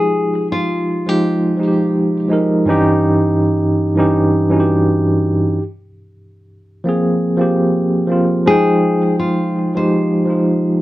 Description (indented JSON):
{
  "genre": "lo-fi hip hop",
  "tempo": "83 BPM",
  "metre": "4/4",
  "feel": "swing 58% on 16ths",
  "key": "F minor",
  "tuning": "A4 = 439 Hz",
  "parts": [
    { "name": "nylon-string guitar", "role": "melody", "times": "0.0-1.9, 8.5-10.8 s", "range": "F4 to C5", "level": "-18 LUFS", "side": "left 3 dB", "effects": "low-pass filter, tape echo" },
    { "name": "tine electric piano", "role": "accompaniment", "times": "0.0-10.8 s", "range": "G2 to G5", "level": "-14 LUFS", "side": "right 1 dB", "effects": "medium tremolo, low-pass filter" }
  ],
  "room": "wet studio reverb, RT60 0.5 s",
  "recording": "none",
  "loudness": "-13 LUFS",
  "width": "side -16 dB against mid",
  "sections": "0.0-10.8 A section",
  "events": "none",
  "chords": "0.0 Fm11; 2.7 Eb7b9/G; 5.6 Ab69; 8.5 Fm9"
}